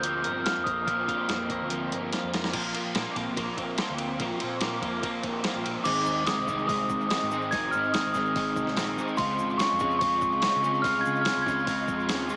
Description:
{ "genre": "indie rock", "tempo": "144 BPM", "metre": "4/4", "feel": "straight", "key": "unclear", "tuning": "A4 = 440 Hz", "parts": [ { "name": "glockenspiel with rubber mallets", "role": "melody", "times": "0.0-2.1, 5.8-12.2 s", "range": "C6 to Ab6", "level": "-27 LUFS", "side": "equal", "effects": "none" }, { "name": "crunchy overdriven guitar", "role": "riff", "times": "0.0-12.4 s", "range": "Eb3 to F4", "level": "-32 LUFS", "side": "right 1 dB", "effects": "ensemble chorus" }, { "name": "twelve-string electric guitar", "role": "riff", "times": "0.0-12.4 s", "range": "Ab2 to F4", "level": "-32 LUFS", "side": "left 1 dB", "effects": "spring reverb" }, { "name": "picked electric bass", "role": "bass", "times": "0.0-12.3 s", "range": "F1 to Db3", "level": "-40 LUFS", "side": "equal", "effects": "none" }, { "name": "dusty soul sampler-style drum kit", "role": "drums", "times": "0.0-12.2 s", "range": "crash cymbal, hi-hat, kick drum, ride cymbal, snare drum", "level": "-32 LUFS", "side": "equal", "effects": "none" }, { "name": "egg shaker", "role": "percussion", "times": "5.8-12.4 s", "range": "none", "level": "-50 LUFS", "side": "left 1 dB", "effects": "none" } ], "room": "moderate studio reverb, RT60 0.6 s", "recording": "small speaker sound", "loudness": "-24 LUFS", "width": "side -29 dB against mid", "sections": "0.0-2.5 A section; 2.5-5.9 B section; 5.9-12.4 C section", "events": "drum fill 2.1-2.5", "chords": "0.0 Bbsus2; 5.9 Ab; 9.2 Dbmaj7" }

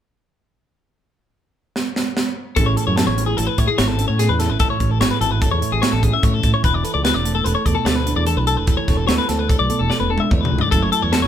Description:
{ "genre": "math rock and midwest emo", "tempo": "147 BPM", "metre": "5/4", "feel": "straight", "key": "A major", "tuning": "A4 = 440 Hz", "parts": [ { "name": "crisp fusion drum kit", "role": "drums", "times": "1.8-11.2 s", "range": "hi-hat, kick drum, snare drum, toms", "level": "-20 LUFS", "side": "right 1 dB", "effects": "none" }, { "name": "mellow electric guitar", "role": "accompaniment", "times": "2.6-11.3 s", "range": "F#2 to A4", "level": "-24 LUFS", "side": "right 6 dB", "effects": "none" }, { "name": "twelve-string electric guitar", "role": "arpeggios", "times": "2.6-11.3 s", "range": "G#4 to E5", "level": "-21 LUFS", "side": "left 6 dB", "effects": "none" }, { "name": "fingered electric bass", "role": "bass", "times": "2.6-11.3 s", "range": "E1 to A2", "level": "-21 LUFS", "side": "equal", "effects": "none" } ], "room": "light reverb", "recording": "band playing live in one room", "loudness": "-16 LUFS", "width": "side -10 dB against mid", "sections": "0.5-2.6 A section; 2.6-11.3 B section", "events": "drum fill 1.8-2.6, 9.9-10.7", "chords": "0.5 N.C.; 2.6 Amaj7; 6.6 E7sus4; 10.7 F#m7" }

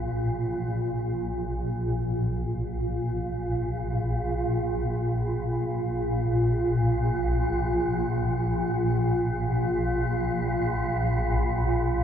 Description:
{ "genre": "ambient", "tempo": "free time", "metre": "none", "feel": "none", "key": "unclear", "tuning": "A4 = 441 Hz", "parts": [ { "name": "swarming drone", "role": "solo", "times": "0.0-12.0 s", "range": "Bb1 to Bb2", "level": "-24 LUFS", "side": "equal", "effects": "built-in reverb" } ], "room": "wet cathedral reverb, RT60 6.3 s", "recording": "none", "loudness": "-24 LUFS", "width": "side -8 dB against mid", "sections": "0.5-12.0 A section", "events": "none", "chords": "none" }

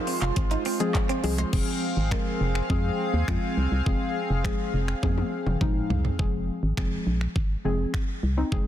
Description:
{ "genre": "dance-pop", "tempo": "103 BPM", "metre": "4/4", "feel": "straight", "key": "F minor", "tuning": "A4 = 443 Hz", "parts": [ { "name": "soft round pluck", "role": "accompaniment", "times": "0.0-8.7 s", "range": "F3 to Bb4", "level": "-30 LUFS", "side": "left 2 dB", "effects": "chorus, sidechain pumping" }, { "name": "chorused pulse-width pad", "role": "sustained chords", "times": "0.0-6.2 s", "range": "Ab3 to F5", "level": "-31 LUFS", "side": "equal", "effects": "sidechain pumping" }, { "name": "mallet-like synth pluck", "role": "arpeggios", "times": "0.0-1.5 s", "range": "C4 to C6", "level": "-38 LUFS", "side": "left 3 dB", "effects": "chorus, sidechain pumping, tape echo" }, { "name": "direct-recorded clean electric guitar", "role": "riff", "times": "0.0-1.5 s", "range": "Ab3 to F4", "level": "-33 LUFS", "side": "right 7 dB", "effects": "lush chorus" }, { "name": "pop drum kit", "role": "drums", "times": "0.1-8.7 s", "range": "crash cymbal, finger snaps, handclaps, hi-hat, kick drum, toms", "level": "-28 LUFS", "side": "equal", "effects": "none" }, { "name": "organ-like FM bass", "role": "bass", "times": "0.2-8.7 s", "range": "F1 to F2", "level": "-26 LUFS", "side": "equal", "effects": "sidechain pumping" } ], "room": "light reverb, digital ambience", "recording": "dense, heavily limited modern master", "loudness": "-24 LUFS", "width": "side -11 dB against mid", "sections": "0.0-1.5 A section; 1.5-6.2 B section; 6.2-8.7 C section", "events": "drum fill 5.0-6.2", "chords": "0.0 Fm" }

